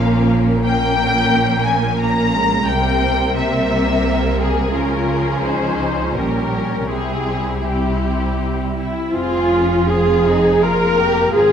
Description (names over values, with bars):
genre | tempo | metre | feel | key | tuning
classical, slow romantic movement for string orchestra | 80-89 BPM | 3/4 | rubato | F minor | A4 = 438 Hz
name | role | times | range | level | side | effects
rich symphonic violin section | melody | 0.0-11.5 s | E4 to Bb5 | -22 LUFS | left 3 dB | none
rich studio violin section | second line | 0.0-11.5 s | Bb3 to Bb4 | -23 LUFS | left 2 dB | none
warm symphonic viola section | accompaniment | 0.0-11.5 s | F3 to Bb4 | -19 LUFS | right 1 dB | none
rich symphonic cello section | bass | 0.0-11.5 s | F2 to Db3 | -23 LUFS | right 2 dB | none
warm symphonic double bass section | bass | 0.0-11.5 s | F1 to Db2 | -22 LUFS | right 2 dB | none
room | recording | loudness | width
wet scoring stage reverb, RT60 1.8 s | dark, warm production | -15 LUFS | side -8 dB against mid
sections
0.0-9.1 A section; 9.1-11.5 B section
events
none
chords
0.0 Bbm; 0.6 Gdim/Bb; 2.7 C7; 4.7 Db; 6.2 Gdim/Bb; 6.9 C; 9.1 Fm